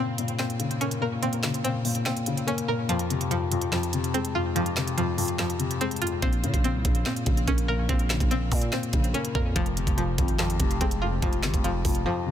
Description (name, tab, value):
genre	hip hop, trap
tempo	144 BPM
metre	4/4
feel	half-time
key	F minor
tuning	A4 = 440 Hz
part	felt-muted upright piano	accompaniment	0.0-12.3 s	F2 to Bb3	-28 LUFS	left 3 dB	none
part	string-like resonator pluck	arpeggios	0.0-12.3 s	F3 to Bb4	-30 LUFS	right 2 dB	chorus, phaser, tape echo
part	trap drum kit	drums	0.2-12.0 s	handclaps, hi-hat, kick drum, snare drum	-28 LUFS	right 1 dB	none
part	growling 808-style bass	bass	6.2-12.1 s	F1 to Bb2	-29 LUFS	equal	none
room	little or no reverb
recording	dense, heavily limited modern master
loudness	-23 LUFS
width	side -10 dB against mid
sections	0.0-12.3 A section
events	break 0.0-6.2; drums muted 12.1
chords	0.0 Bbmadd9; 2.9 Fm; 6.2 Bbmadd9; 9.6 Fm